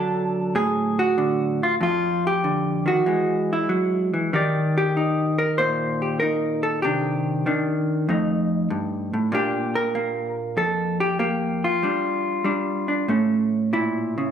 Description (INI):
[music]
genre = solo jazz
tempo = 96 BPM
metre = 4/4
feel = swing 68% on 8ths, rubato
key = Bb major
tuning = A4 = 439 Hz
[part]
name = vintage hollow-body jazz guitar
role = solo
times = 0.0-14.3 s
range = F2 to D5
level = -20 LUFS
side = equal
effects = none
[sound]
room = wet large studio reverb, RT60 1.3 s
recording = none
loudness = -20 LUFS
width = side -8 dB against mid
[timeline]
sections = 0.0-14.3 A section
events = none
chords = 0.0 Dmaj7; 1.8 Ebmaj9/F; 3.1 E; 4.3 Ebmaj7; 6.8 Cmadd9; 8.1 F9; 9.3 Bb6; 11.8 Dmadd11/G; 13.1 A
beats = 0.55 1.17 | 1.79 2.42 3.05 3.69 | 4.33 4.96 5.59 6.22 | 6.84 7.47 8.09 8.71 | 9.33 9.95 10.57 11.19 | 11.82 12.45 13.09 13.73